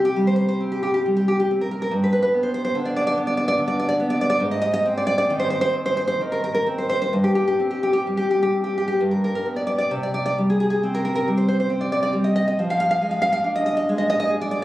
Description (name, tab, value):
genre	romantic piece for solo classical guitar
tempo	64-72 BPM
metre	3/4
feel	rubato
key	C minor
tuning	A4 = 440 Hz
part	nylon-string guitar	solo	0.0-14.6 s	G2 to F5	-19 LUFS	equal	none
room	light reverb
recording	recorded on a phone in the room, club reverb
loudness	-19 LUFS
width	side -15 dB against mid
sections	0.0-14.6 A section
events	none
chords	0.0 C5; 1.9 G; 4.4 Ab; 7.1 C5/G; 9.0 G; 9.9 C5; 12.6 Ddim/F